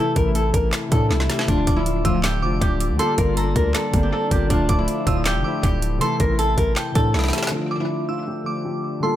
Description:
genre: hip hop, trap.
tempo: 159 BPM.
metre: 4/4.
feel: half-time.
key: D minor.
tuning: A4 = 440 Hz.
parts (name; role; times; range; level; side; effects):
flamenco guitar; melody; 0.0-9.2 s; D4 to Bb4; -24 LUFS; equal; low-pass filter, analog delay.
warbly lo-fi synth keys; accompaniment; 0.0-9.2 s; C3 to G4; -26 LUFS; left 3 dB; chorus, low-pass filter, analog delay.
warm French horn section; sustained chords; 0.0-9.2 s; C3 to E4; -33 LUFS; right 2 dB; low-pass filter.
distorted 808-style bass; bass; 0.2-7.3 s; D1 to A2; -22 LUFS; equal; distortion.
trap drum kit; drums; 0.2-7.6 s; handclaps, hi-hat, kick drum, snare drum; -23 LUFS; equal; analog delay.
glassy synth bell; second line; 1.7-9.2 s; G5 to E6; -30 LUFS; right 2 dB; chorus, tremolo, analog delay.
mellow synth brass; stabs; 2.0-2.2, 5.1-5.2 s; D2 to F3; -29 LUFS; left 1 dB; none.
room: digital ambience.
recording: echo-heavy mix.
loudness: -18 LUFS.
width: side -12 dB against mid.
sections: 0.0-7.5 A section; 7.5-9.2 B section.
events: drum fill 1.1-1.5, 7.1-7.5; filter sweep 7.5-9.2.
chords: 0.0 Am; 1.5 Dm; 3.0 Gm7; 4.5 Dm; 6.0 Am; 7.5 Dm.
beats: 0.35 0.73 1.11 | 1.48 1.86 2.24 2.62 | 2.99 3.37 3.75 4.12 | 4.50 4.88 5.26 5.63 | 6.01 6.39 6.77 7.14 | 7.52 7.90 8.28 8.65 | 9.03.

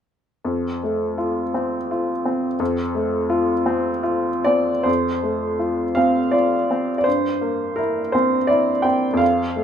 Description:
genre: classical, romantic character piece for solo piano.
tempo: 55 BPM (dotted quarters).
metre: 6/8.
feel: uneven beats, rubato.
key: F major.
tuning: A4 = 435 Hz.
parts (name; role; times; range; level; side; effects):
clear upright piano; solo; 0.4-9.6 s; F2 to G5; -18 LUFS; equal; none.
room: light reverb.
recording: minimal, uncompressed stereo recording.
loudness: -18 LUFS.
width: side -8 dB against mid.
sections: 0.5-4.9 A section; 4.9-9.6 B section.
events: none.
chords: 0.5 F; 7.1 C7/G.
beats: | 0.46 1.55 | 2.60 3.68 | 4.88 5.99 | 7.06 8.15 | 9.21.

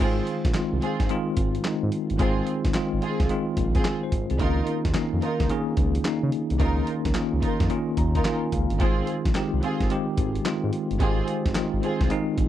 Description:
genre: R&B, new jack swing.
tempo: 109 BPM.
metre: 4/4.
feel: swing 66% on 16ths.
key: Ab major.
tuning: A4 = 441 Hz.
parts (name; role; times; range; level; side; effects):
bell-like tine electric piano; accompaniment; 0.0-12.5 s; Eb3 to Bb5; -26 LUFS; left 1 dB; medium stereo tremolo.
dark studio string section; stabs; 0.0-12.1 s; C4 to Bb4; -31 LUFS; right 4 dB; tape echo.
smooth synth bass; bass; 0.0-12.5 s; G1 to Db3; -27 LUFS; equal; none.
dusty soul sampler-style drum kit; drums; 0.0-12.5 s; crash cymbal, handclaps, hi-hat, kick drum, snare drum; -26 LUFS; equal; none.
room: little or no reverb.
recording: dry, close 1970s-style studio recording.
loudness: -22 LUFS.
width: side -12 dB against mid.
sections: 0.0-12.5 A section.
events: tine electric piano fill 7.7-8.8.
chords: 0.0 Ab6; 4.4 Db69; 8.8 Ab6.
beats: 0.54 1.09 1.64 | 2.19 2.74 3.29 3.85 | 4.40 4.95 5.50 6.05 | 6.60 7.15 7.70 8.25 | 8.80 9.35 9.90 10.45 | 11.00 11.55 12.10.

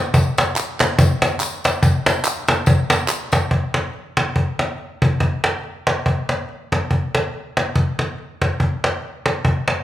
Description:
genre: gospel.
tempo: 142 BPM.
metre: 4/4.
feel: swing 56% on 8ths.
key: none.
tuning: none.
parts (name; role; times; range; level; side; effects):
cajon; drums; 0.1-9.8 s; none; -17 LUFS; equal; none.
tambourine and handclaps; percussion; 0.1-3.4 s; none; -25 LUFS; right 1 dB; none.
room: moderate large studio reverb, RT60 1.4 s.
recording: band playing live in one room.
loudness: -17 LUFS.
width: side -13 dB against mid.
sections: 0.0-3.5 A section; 3.5-9.8 B section.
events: none.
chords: none.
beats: | 0.13 0.56 0.98 1.40 | 1.82 2.24 2.67 3.09 | 3.51 3.93 4.36 4.78 | 5.21 5.63 6.05 6.48 | 6.90 7.33 7.75 8.18 | 8.60 9.03 9.45.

